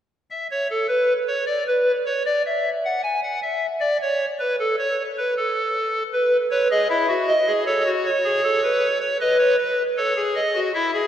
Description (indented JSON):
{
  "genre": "classical, baroque-style 3-part fugue for pipe organ",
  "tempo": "78 BPM",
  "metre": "4/4",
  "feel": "straight",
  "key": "unclear",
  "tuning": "A4 = 440 Hz",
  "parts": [
    { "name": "pipe organ, clarinet reed", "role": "solo", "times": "0.3-11.1 s", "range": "E4 to G#5", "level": "-19 LUFS", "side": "equal", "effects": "none" }
  ],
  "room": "wet church reverb, RT60 3.5 s",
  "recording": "worn, warbling old tape, cassette tape, warbly pitch drift",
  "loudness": "-19 LUFS",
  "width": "side -10 dB against mid",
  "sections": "0.0-11.1 A section",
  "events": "none",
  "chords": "0.0 N.C.; 6.1 E; 7.7 F#m; 9.2 B",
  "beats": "0.70 1.48 2.26 | 3.04 3.81 4.58 5.36 | 6.13 6.90 7.67 8.44 | 9.21 9.98 10.74"
}